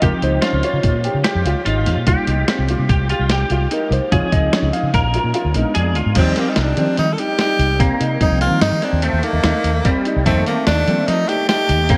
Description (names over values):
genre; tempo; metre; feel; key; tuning
progressive instrumental, band music in an uneven meter; 147 BPM; 5/4; straight; unclear; A4 = 445 Hz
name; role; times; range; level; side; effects
clean electric guitar; second line; 0.0-12.0 s; G3 to Bb4; -26 LUFS; equal; ensemble chorus
mellow tine electric piano; accompaniment; 0.0-11.0 s; Eb3 to F5; -27 LUFS; equal; none
warm concert grand piano; arpeggios; 0.0-12.0 s; C4 to G4; -26 LUFS; equal; none
fretless electric bass; bass; 0.0-12.0 s; Ab1 to F3; -21 LUFS; equal; none
lo-fi sampler-style drum kit; drums; 0.0-12.0 s; crash cymbal, hi-hat, kick drum, snare drum; -24 LUFS; equal; none
bright tenor saxophone; melody; 6.2-12.0 s; Bb3 to A4; -22 LUFS; equal; tape echo
room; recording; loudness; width
moderate huge ambient reverb, RT60 8.9 s; dreamy mix soaked in reverb; -17 LUFS; mono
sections
0.0-6.2 A section; 6.2-12.0 B section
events
tine electric piano solo 0.0-6.2; kick and snare drop out 5.3-6.2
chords
0.0 Dbmaj7; 2.1 Cm7; 4.1 Dbmaj7; 4.9 Bb7b9; 6.2 Eb69; 10.3 F7sus4